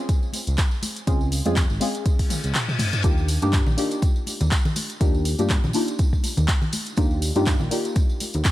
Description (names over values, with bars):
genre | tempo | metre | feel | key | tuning
deep house | 122 BPM | 4/4 | swing 56% on 16ths | Eb major | A4 = 437 Hz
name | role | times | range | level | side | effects
deep mellow chord stab | stabs | 0.0-8.5 s | Ab3 to Ab4 | -27 LUFS | left 1 dB | chorus, phaser, sidechain pumping, dub echo
deep house drum kit | drums | 0.1-8.5 s | handclaps, hi-hat, toms | -28 LUFS | equal | none
electronic kick drum | drums | 0.1-8.5 s | none | -21 LUFS | equal | none
tambourine | percussion | 0.1-8.5 s | none | -35 LUFS | right 3 dB | none
congas | percussion | 0.3-8.4 s | none | -30 LUFS | left 1 dB | none
smooth synth bass | bass | 0.5-8.4 s | Ab1 to G2 | -24 LUFS | equal | sidechain pumping
reverse cymbal | sound effects | 2.3-3.0 s | none | -31 LUFS | left 5 dB | none
room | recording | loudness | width
little or no reverb | vinyl crackle | -20 LUFS | side -15 dB against mid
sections
0.0-8.5 A section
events
reverse cymbal 2.3-3.0; drum fill 2.3-3.0; kick drops out 2.5-3.0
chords
0.0 Dbmaj7; 3.0 Ebmaj9